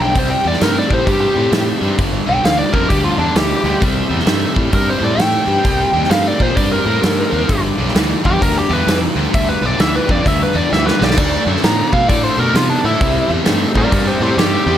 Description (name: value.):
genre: blues rock power trio and southern rock.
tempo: 131 BPM.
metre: 4/4.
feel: swing 64% on 8ths.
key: G major.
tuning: A4 = 440 Hz.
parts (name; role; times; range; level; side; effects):
biting lead guitar; melody; 0.0-14.8 s; D4 to Bb5; -18 LUFS; equal; overdrive.
bright tonewheel organ; sustained chords; 0.0-14.8 s; G3 to G5; -29 LUFS; right 4 dB; none.
biting overdriven guitar; riff; 0.0-14.8 s; G2 to B3; -19 LUFS; left 1 dB; none.
fuzz picked electric bass; bass; 0.0-14.8 s; G1 to C3; -20 LUFS; equal; overdrive.
big rock drum kit; drums; 0.2-14.5 s; crash cymbal, hi-hat, kick drum, snare drum; -18 LUFS; right 1 dB; none.
room: light reverb, small room ambience.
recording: none.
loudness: -13 LUFS.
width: side -10 dB against mid.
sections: 0.0-14.8 A section.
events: lead electric guitar solo 0.0-14.8; drum fill 10.7-11.2.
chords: 0.2 C; 2.0 G; 3.8 C; 5.7 Cm7; 7.5 G; 11.2 D; 13.0 C.